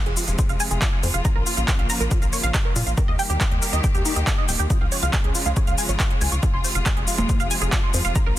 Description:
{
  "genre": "uplifting trance",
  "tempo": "139 BPM",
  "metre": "4/4",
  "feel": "straight",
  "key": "F minor",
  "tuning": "A4 = 440 Hz",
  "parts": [
    { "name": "clear symphonic string section", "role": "sustained chords", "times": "0.0-8.4 s", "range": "C3 to G4", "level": "-30 LUFS", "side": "left 2 dB", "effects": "sidechain pumping, low-pass filter" },
    { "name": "tight sequenced synth", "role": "arpeggios", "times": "0.1-8.3 s", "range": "Eb4 to Db6", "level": "-28 LUFS", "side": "right 2 dB", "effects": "chorus, phaser, sidechain pumping, ping-pong delay" },
    { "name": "tight sequencer bass", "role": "bass", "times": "0.1-8.3 s", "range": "Eb1 to Bb2", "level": "-24 LUFS", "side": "equal", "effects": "sidechain pumping" },
    { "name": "big-room dance drum kit", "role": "drums", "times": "0.1-8.2 s", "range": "congas, handclaps, hi-hat, shaker", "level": "-26 LUFS", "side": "right 1 dB", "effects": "overdrive, sidechain pumping on hats, sidechain pumping on cymbals, sidechain pumping on perc" },
    { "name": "electronic kick drum", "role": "drums", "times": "0.4-8.2 s", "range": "none", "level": "-22 LUFS", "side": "equal", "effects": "none" }
  ],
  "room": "digital ambience",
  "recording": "dense, heavily limited modern master",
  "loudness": "-19 LUFS",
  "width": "side -14 dB against mid",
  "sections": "0.0-8.4 A section",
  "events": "none",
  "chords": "0.0 Fm; 1.2 Bbm; 3.0 Eb; 4.7 Db; 6.4 Fm"
}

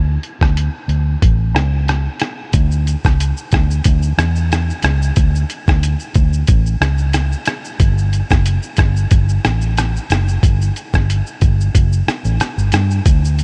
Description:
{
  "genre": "indie pop, bedroom pop",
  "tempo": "91 BPM",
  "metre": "4/4",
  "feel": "swing 55% on 16ths",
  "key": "unclear",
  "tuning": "A4 = 440 Hz",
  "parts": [
    { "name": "vintage muted fingered electric bass", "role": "bass", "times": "0.0-13.4 s", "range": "F#1 to G2", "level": "-18 LUFS", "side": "equal", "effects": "none" },
    { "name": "lo-fi sampler-style drum kit", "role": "drums", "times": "0.2-13.4 s", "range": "hi-hat, kick drum, rim click, shaker", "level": "-19 LUFS", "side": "equal", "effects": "overdrive" }
  ],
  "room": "little or no reverb",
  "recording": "none",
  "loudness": "-16 LUFS",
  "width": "mono",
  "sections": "0.0-2.5 A section; 2.5-13.4 B section",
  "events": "none",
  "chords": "none"
}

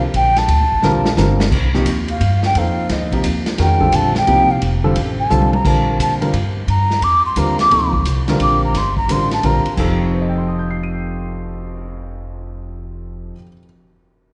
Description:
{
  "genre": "modal jazz",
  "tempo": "174 BPM",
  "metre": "3/4",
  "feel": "swing 65% on 8ths",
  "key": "F mixolydian",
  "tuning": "A4 = 438 Hz",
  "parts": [
    { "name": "breathy mellow concert flute", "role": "melody", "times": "0.0-9.7 s", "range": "Eb5 to D6", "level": "-20 LUFS", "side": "equal", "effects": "none" },
    { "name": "upright bass", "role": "bass", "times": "0.0-13.3 s", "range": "F1 to Bb2", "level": "-22 LUFS", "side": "equal", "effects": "none" },
    { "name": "vintage drum kit", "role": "drums", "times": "0.1-11.8 s", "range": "crash cymbal, cymbal swell, hi-hat, kick drum, ride cymbal, snare drum, toms", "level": "-26 LUFS", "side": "equal", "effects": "none" },
    { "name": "warm concert grand piano", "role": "accompaniment", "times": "0.8-13.7 s", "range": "F2 to Eb7", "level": "-22 LUFS", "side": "equal", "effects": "none" }
  ],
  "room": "moderate concert hall reverb, RT60 2.0 s",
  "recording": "recorded in a church or concert hall, tape saturation, nothing above 10.3 kHz",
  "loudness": "-16 LUFS",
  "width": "mono",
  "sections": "0.0-1.5 A section; 1.5-9.8 B section; 9.8-11.8 C section",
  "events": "drum fill 0.8-1.5, 5.3-5.6; flute solo 1.5-9.8",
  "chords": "0.0 Gmadd9; 1.5 F9; 5.6 Gmadd9; 9.8 F9"
}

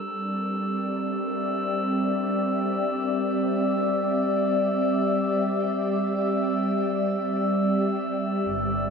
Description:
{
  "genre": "ambient",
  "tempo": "free time",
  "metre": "none",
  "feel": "none",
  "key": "G dorian",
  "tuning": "A4 = 440 Hz",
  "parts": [
    { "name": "glassy FM pad", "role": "sustained chords", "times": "0.0-8.9 s", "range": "G3 to E5", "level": "-24 LUFS", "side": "equal", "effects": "ensemble chorus, built-in reverb" },
    { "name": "glass harmonica", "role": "texture", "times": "0.0-8.9 s", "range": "E6", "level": "-31 LUFS", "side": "equal", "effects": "stereo widening" },
    { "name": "rich symphonic double bass section", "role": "bass", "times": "8.5-8.9 s", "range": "G1", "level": "-32 LUFS", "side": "right 1 dB", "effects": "none" }
  ],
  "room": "wet cathedral reverb, RT60 6.6 s",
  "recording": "none",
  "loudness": "-23 LUFS",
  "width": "side -5 dB against mid",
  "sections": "0.0-8.5 A section",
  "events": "none",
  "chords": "0.0 Gm69"
}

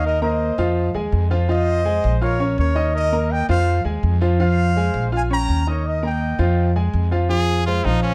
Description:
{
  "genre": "latin",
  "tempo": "165 BPM",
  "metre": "4/4",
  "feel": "straight",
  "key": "F minor",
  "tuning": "A4 = 440 Hz",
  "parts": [
    { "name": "warm trumpet section", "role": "melody", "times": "0.0-6.7 s", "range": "Bb4 to Bb5", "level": "-26 LUFS", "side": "equal", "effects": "plate reverb" },
    { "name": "clear grand piano", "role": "accompaniment", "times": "0.0-8.1 s", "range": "F3 to F6", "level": "-25 LUFS", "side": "equal", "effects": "none" },
    { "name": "upright bass", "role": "bass", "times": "0.0-8.1 s", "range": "Bb1 to F2", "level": "-22 LUFS", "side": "equal", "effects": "none" },
    { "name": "brilliant trumpet", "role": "melody", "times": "7.3-8.1 s", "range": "Db4 to Ab4", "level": "-25 LUFS", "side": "equal", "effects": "plate reverb" }
  ],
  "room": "light reverb",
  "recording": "close, detailed microphones",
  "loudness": "-19 LUFS",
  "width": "mono",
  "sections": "0.0-7.3 A section",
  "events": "none",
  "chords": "0.0 Eb5; 0.8 Fm; 2.2 Bbm; 2.9 Eb5; 3.7 Fm; 5.1 Bbm; 5.9 Eb; 6.6 Fm"
}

